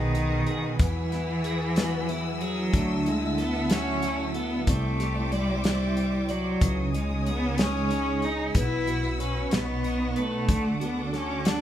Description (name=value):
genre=six-eight pop ballad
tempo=62 BPM (dotted quarters)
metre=6/8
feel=straight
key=E major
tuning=A4 = 440 Hz
part: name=warm cello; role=melody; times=0.0-11.6 s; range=D#3 to E4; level=-28 LUFS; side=equal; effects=none
part: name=twelve-string electric guitar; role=accompaniment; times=0.0-11.6 s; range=B2 to D5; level=-31 LUFS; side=right 3 dB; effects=harmonic tremolo
part: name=warm studio string section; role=sustained chords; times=0.0-11.6 s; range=A4 to E6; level=-36 LUFS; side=equal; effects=none
part: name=picked acoustic archtop guitar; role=arpeggios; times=0.0-11.6 s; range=B2 to D5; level=-37 LUFS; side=left 7 dB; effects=ping-pong delay
part: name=upright bass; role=bass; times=0.0-11.6 s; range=B1 to E2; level=-32 LUFS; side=equal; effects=none
part: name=damped 70s drum kit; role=drums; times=0.1-11.6 s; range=hi-hat, kick drum, snare drum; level=-26 LUFS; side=equal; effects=none
room=moderate large studio reverb, RT60 1.1 s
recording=band playing live in one room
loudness=-24 LUFS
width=side -11 dB against mid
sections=0.0-11.6 A section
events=none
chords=0.0 B6; 0.8 Eadd9; 2.7 Dadd9; 4.7 Cadd9; 6.6 C#madd9; 8.5 Bsus4; 9.5 Badd9; 10.5 D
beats=| 0.79 1.76 | 2.73 3.70 | 4.67 5.64 | 6.61 7.58 | 8.55 9.52 | 10.49 11.46